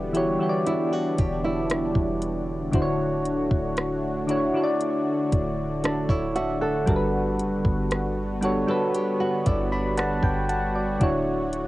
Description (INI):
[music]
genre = contemporary R&B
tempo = 58 BPM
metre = 4/4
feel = straight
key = D major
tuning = A4 = 440 Hz
[part]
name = soft electric-piano-like synth keys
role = accompaniment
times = 0.0-11.7 s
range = D3 to B5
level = -25 LUFS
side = equal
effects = chorus, cassette tape
[part]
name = warm analog pad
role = sustained chords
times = 0.0-11.7 s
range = D3 to C#5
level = -30 LUFS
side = left 1 dB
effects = chorus, cassette tape
[part]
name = clean 808-style bass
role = bass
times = 0.0-11.7 s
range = D1 to G1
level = -32 LUFS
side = equal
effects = none
[part]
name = smooth R&B drum kit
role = drums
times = 0.1-11.7 s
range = hi-hat, kick drum, rim click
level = -24 LUFS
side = equal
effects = none
[part]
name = nylon-string guitar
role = arpeggios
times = 0.7-11.0 s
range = D4 to A4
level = -30 LUFS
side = right 3 dB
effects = cassette tape, tape echo
[sound]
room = little or no reverb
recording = home recording on cassette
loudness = -22 LUFS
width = side -17 dB against mid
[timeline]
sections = 0.0-11.7 A section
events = synth keys fill 8.9-11.0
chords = 0.0 Em7; 2.7 Dmaj7; 6.9 Gmaj7; 11.0 Dmaj7